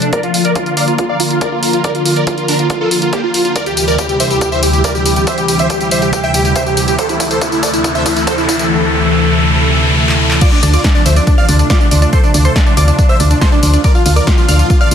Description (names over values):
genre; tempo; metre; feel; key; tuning
uplifting trance; 140 BPM; 4/4; straight; D minor; A4 = 441 Hz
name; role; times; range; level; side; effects
supersaw chords; melody; 0.0-14.9 s; Bb3 to G5; -16 LUFS; right 1 dB; phaser, cassette tape, sidechain pumping, low-pass filter, tape echo
lush unison pad; sustained chords; 0.0-14.9 s; D2 to Bb4; -16 LUFS; left 1 dB; chorus, phaser, sidechain pumping
punchy analog drum machine; drums; 0.0-14.9 s; crash cymbal, handclaps, hi-hat, snare drum, tambourine; -19 LUFS; left 1 dB; overdrive, high-pass filter on hats, high-pass filter on perc, high-pass filter on snare, high-pass filter on cymbals, high-pass filter on room
electronic kick drum; drums; 0.1-14.8 s; none; -14 LUFS; equal; overdrive, high-pass filter on kick, high-pass filter on room
riser; sound effects; 5.8-10.4 s; none; -19 LUFS; left 1 dB; none
wide unison pluck; second line; 10.4-14.9 s; D5 to F6; -20 LUFS; right 1 dB; sidechain pumping, tape echo
solid FM bass; bass; 10.6-14.9 s; D2; -10 LUFS; equal; sidechain pumping
room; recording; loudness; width
light reverb; dense, heavily limited modern master; -10 LUFS; side -8 dB against mid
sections
0.0-10.4 A section; 10.4-14.9 B section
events
build-up 0.0-10.4; drum fill 3.6-8.7, 10.1-10.4; riser 5.8-10.4; drop 10.4-14.9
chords
0.1 Bb/D; 3.6 C/D; 7.0 Am/D; 10.4 Dm7; 13.8 Bb/D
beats
| 0.13 0.56 0.98 1.41 | 1.84 2.27 2.70 3.13 | 3.56 3.98 4.41 4.84 | 5.27 5.70 6.13 6.56 | 6.99 7.41 7.84 8.27 | 8.70 9.13 9.56 9.98 | 10.41 10.84 11.27 11.70 | 12.13 12.56 12.98 13.41 | 13.84 14.27 14.70